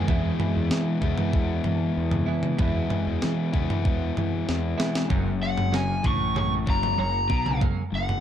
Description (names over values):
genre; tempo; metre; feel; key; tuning
indie rock; 95 BPM; 4/4; straight; unclear; A4 = 440 Hz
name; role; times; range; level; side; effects
overdriven electric guitar; riff; 0.0-8.2 s; E2 to E4; -29 LUFS; left 8 dB; none
twelve-string electric guitar; riff; 0.0-7.8 s; C#3 to E4; -31 LUFS; right 7 dB; lush chorus
fuzz fingered electric bass; bass; 0.0-8.2 s; F#1 to E3; -28 LUFS; equal; overdrive
clean 12-bit digital drum machine; drums; 0.1-8.2 s; kick drum, snare drum, toms; -26 LUFS; right 1 dB; none
lead guitar through a small cranked amp; melody; 5.4-8.2 s; F#5 to C#6; -27 LUFS; equal; overdrive
room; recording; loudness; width
light reverb, digital ambience; dark, warm production; -22 LUFS; side -10 dB against mid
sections
0.1-5.1 A section; 5.1-8.2 B section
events
drum fill 4.5-5.1; lead electric guitar solo 5.1-8.2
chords
0.1 E; 5.1 F#